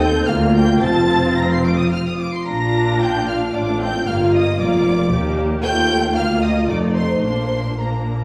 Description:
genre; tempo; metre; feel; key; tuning
quick classical-period movement for string orchestra; 105-118 BPM; 3/4; rubato; Bb major; A4 = 439 Hz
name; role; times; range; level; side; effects
rich symphonic violin section; melody; 0.0-8.2 s; Bb5 to D7; -28 LUFS; equal; none
warm symphonic violin section; second line; 0.0-8.2 s; Bb4 to F6; -28 LUFS; equal; none
rich studio viola section; accompaniment; 0.0-8.2 s; A3 to A4; -22 LUFS; equal; none
rich symphonic cello section; bass; 0.0-8.2 s; D2 to Bb2; -25 LUFS; equal; none
warm symphonic double bass section; bass; 0.0-8.2 s; F1 to Eb2; -25 LUFS; equal; none
room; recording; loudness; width
wet recital hall reverb, RT60 1.3 s; recorded in a church or concert hall; -18 LUFS; mono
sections
0.0-8.2 A section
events
none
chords
0.3 Bb/D; 0.8 F; 2.5 Bb; 4.1 Gm7; 5.1 Ebmaj7; 5.6 F7/Eb; 6.2 Bb/D; 6.7 F7; 7.2 Bb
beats
0.27 | 0.82 1.38 1.93 | 2.48 3.02 3.55 | 4.08 4.60 5.12 | 5.63 6.15 6.68 | 7.23 7.80

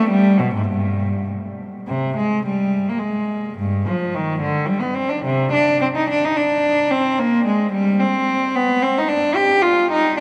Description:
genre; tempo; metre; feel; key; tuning
classical, baroque-style suite movement for unaccompanied cello; 100-112 BPM; 3/4; rubato; C minor; A4 = 445 Hz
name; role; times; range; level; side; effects
rich cello; solo; 0.0-10.2 s; G2 to G4; -19 LUFS; equal; none
room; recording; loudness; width
wet cathedral reverb, RT60 5.7 s; none; -19 LUFS; mono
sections
0.0-1.9 A section; 1.9-10.2 B section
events
none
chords
none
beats
| 0.12 0.71 1.31 | 1.90 2.48 3.04 | 3.62 4.18 4.73 | 5.27 5.83 6.38 | 6.93 7.47 8.02 | 8.57 9.12 9.65

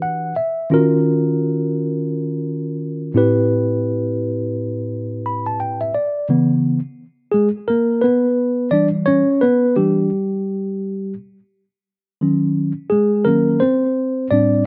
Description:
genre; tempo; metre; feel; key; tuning
hip hop; 86 BPM; 4/4; swing 61% on 16ths; unclear; A4 = 439 Hz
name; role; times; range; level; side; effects
tine electric piano; solo; 0.0-14.7 s; A2 to B5; -18 LUFS; equal; none
room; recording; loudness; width
little or no reverb; recorded outdoors, with no room sound; -19 LUFS; mono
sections
0.0-6.3 A section; 6.3-14.7 A section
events
tine electric piano fill 0.0-0.7, 4.9-6.3; tine electric piano solo 6.3-14.7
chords
0.0 Em9; 0.7 D#m9; 3.2 Am9; 6.3 C#m7; 8.7 Em7; 11.9 D#m7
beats
0.01 | 0.71 1.41 2.11 2.80 | 3.50 4.20 4.90 5.59 | 6.29 6.99 7.69 8.38 | 9.08 9.78 10.48 11.18 | 11.87 12.57 13.27 13.97

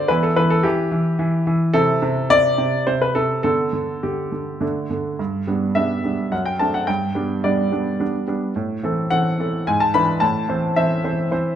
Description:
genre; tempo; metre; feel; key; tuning
classical-period piano sonatina; 107 BPM; 3/4; straight; G major; A4 = 440 Hz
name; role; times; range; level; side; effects
clear baby grand piano; solo; 0.0-11.6 s; F#2 to B5; -18 LUFS; equal; none
room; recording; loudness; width
wet recital hall reverb, RT60 1.4 s; close, detailed microphones; -18 LUFS; side -9 dB against mid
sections
0.0-5.2 A section; 5.2-11.6 B section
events
none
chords
0.1 Em; 1.8 Am/C; 3.5 G/D; 4.6 D5; 5.2 G; 6.3 D7/F#; 6.9 G; 8.6 Am; 9.7 E7/G#; 10.2 Am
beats
| 0.09 0.65 1.20 | 1.75 2.31 2.87 | 3.45 4.04 4.62 | 5.19 5.76 6.32 | 6.88 7.45 8.01 | 8.57 9.12 9.68 | 10.22 10.77 11.32

